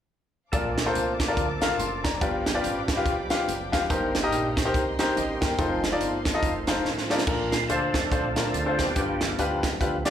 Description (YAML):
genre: uptempo gospel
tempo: 142 BPM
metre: 4/4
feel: swing 59% on 8ths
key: Bb major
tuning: A4 = 440 Hz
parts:
  - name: clear baby grand piano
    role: accompaniment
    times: 0.5-10.1 s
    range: G2 to C6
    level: -26 LUFS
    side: left 2 dB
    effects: slapback echo
  - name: overdriven tonewheel organ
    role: sustained chords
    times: 0.5-10.0 s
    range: D3 to A4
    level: -32 LUFS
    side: right 3 dB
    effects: slow rotary speaker, chorus vibrato
  - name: warm studio string section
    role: sustained chords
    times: 0.5-7.3 s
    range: Eb5 to D6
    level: -40 LUFS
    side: left 4 dB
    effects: none
  - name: upright bass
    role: bass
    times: 0.5-10.1 s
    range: F1 to F2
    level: -34 LUFS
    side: right 1 dB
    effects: none
  - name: crisp fusion drum kit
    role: drums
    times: 0.5-10.1 s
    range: crash cymbal, hi-hat, kick drum, snare drum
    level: -28 LUFS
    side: right 1 dB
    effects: none
room: light reverb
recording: live gig heard through the venue's PA, club reverb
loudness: -23 LUFS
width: side -9 dB against mid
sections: 0.5-7.3 A section; 7.3-10.1 B section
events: drum fill 6.8-7.3; tonewheel organ solo 7.3-10.1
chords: 0.5 Bbmaj7; 2.2 G7; 3.9 Cm7/G; 5.6 F7; 7.3 Bbmaj7; 9.0 G7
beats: | 0.53 0.95 1.37 1.79 | 2.21 2.64 3.06 3.48 | 3.90 4.32 4.74 5.16 | 5.58 6.01 6.43 6.85 | 7.27 7.69 8.12 8.54 | 8.96 9.38 9.81